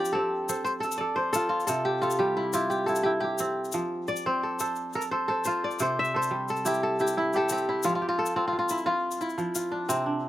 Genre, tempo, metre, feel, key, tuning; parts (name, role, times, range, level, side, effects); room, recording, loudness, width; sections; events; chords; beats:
west african traditional, West African string and xylophone music; 117 BPM (dotted quarters); 12/8; straight; F major; A4 = 439 Hz
kora; melody; 0.0-10.3 s; C4 to E5; -27 LUFS; left 1 dB
kora; arpeggios; 0.0-10.3 s; C3 to D5; -30 LUFS; right 2 dB
tube shaker; percussion; 0.1-10.0 s; -37 LUFS; left 7 dB
little or no reverb; recorded outdoors, with no room sound; -25 LUFS; side -14 dB against mid
0.0-7.8 A section; 7.8-10.3 B section
kora solo 0.0-7.8
0.0 F; 1.7 C; 3.7 F; 5.8 C; 7.8 F5
0.15 0.66 1.17 | 1.69 2.20 2.71 3.23 | 3.74 4.25 4.77 5.28 | 5.79 6.31 6.82 7.33 | 7.84 8.36 8.87 9.38 | 9.89